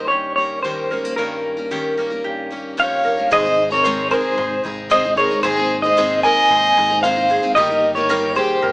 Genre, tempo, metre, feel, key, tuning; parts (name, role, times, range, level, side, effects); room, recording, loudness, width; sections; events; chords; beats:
folk; 113 BPM; 4/4; straight; Ab major; A4 = 440 Hz
electric guitar through a small old amp; melody; 0.0-8.7 s; Bb4 to Ab5; -17 LUFS; equal; tremolo
fingerpicked steel-string acoustic guitar; accompaniment; 0.0-5.4 s; F2 to G4; -34 LUFS; equal
picked steel-string acoustic guitar; accompaniment; 0.0-8.7 s; G2 to Bb4; -25 LUFS; left 1 dB
ukulele; arpeggios; 0.0-8.7 s; G4 to C5; -25 LUFS; right 1 dB
dark fiddle; second line; 2.8-8.7 s; G4 to Eb5; -21 LUFS; left 1 dB
mellow tonewheel organ; sustained chords; 3.3-8.7 s; C3 to G4; -33 LUFS; equal; slow rotary speaker, chorus vibrato
picked electric bass; bass; 3.3-8.7 s; G1 to Ab1; -33 LUFS; equal
light reverb, small room ambience; small speaker sound; -15 LUFS; side -24 dB against mid
0.0-3.3 A section; 3.3-8.7 B section
0.0 Eb7/G; 3.3 Ab; 7.6 Eb/G
0.11 0.65 | 1.18 1.72 2.25 2.78 | 3.32 3.85 4.38 4.91 | 5.44 5.97 6.50 7.04 | 7.57 8.10 8.63